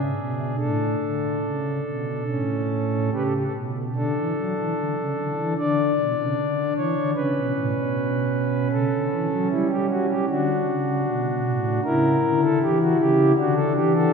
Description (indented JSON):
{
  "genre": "classical, chorale-style piece for pipe organ",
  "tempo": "71-79 BPM",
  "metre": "4/4",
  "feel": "rubato",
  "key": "D major",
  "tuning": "A4 = 440 Hz",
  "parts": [
    { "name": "pipe organ, principal", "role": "solo", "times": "0.0-14.1 s", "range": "A2 to D5", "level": "-20 LUFS", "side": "equal", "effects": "none" }
  ],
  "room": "wet church reverb, RT60 3.5 s",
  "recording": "heard from further back in the room",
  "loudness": "-21 LUFS",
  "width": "side -5 dB against mid",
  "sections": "0.0-3.9 A section; 3.9-14.1 A section",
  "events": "none",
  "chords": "0.0 E7 (rootless); 0.6 Asus4; 2.3 A; 3.9 D5; 5.6 N.C.; 7.2 A7; 10.3 D; 11.8 C#dim7; 13.4 D"
}